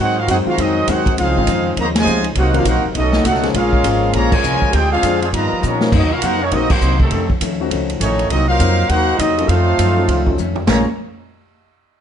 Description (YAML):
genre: jazz, big band swing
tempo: 202 BPM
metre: 4/4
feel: swing 62% on 8ths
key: Bb minor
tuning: A4 = 444 Hz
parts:
  - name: warm trumpet section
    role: melody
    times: 0.0-10.8 s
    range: Gb3 to Bb5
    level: -19 LUFS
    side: right 1 dB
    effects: none
  - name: clear trombone section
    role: second line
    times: 0.0-10.8 s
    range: A#2 to G4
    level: -21 LUFS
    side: right 1 dB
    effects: none
  - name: vintage hollow-body jazz guitar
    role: accompaniment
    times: 0.0-10.8 s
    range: F2 to F4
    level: -24 LUFS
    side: left 6 dB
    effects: none
  - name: mellow saxophone section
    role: sustained chords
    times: 0.0-5.9 s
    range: C3 to C5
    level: -27 LUFS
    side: equal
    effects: none
  - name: upright bass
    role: bass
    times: 0.0-10.8 s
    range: Eb1 to A#2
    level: -19 LUFS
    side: equal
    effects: none
  - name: swinging big-band drum kit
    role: drums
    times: 0.3-10.8 s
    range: crash cymbal, hi-hat, kick drum, ride cymbal, snare drum, toms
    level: -21 LUFS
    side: right 1 dB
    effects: none
  - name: warm upright piano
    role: accompaniment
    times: 0.5-10.8 s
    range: Eb3 to A#4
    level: -24 LUFS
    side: left 6 dB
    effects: none
room: light reverb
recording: nothing above 10.6 kHz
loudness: -13 LUFS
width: side -8 dB against mid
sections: 0.0-5.9 A section; 5.9-10.7 B section; 10.7-11.9 C section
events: band accent 1.9, 4.3, 6.7; drum fill 5.6, 10.4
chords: 0.0 Ab7; 1.2 Dbmaj9; 2.4 Cm7b5; 3.0 B9; 3.5 Bbm7; 4.7 Dm7b5; 5.3 G7alt; 5.9 Cm7b5; 7.1 F7b9b13; 8.3 Cm7b5; 9.5 F7b9b13; 10.7 Bbm7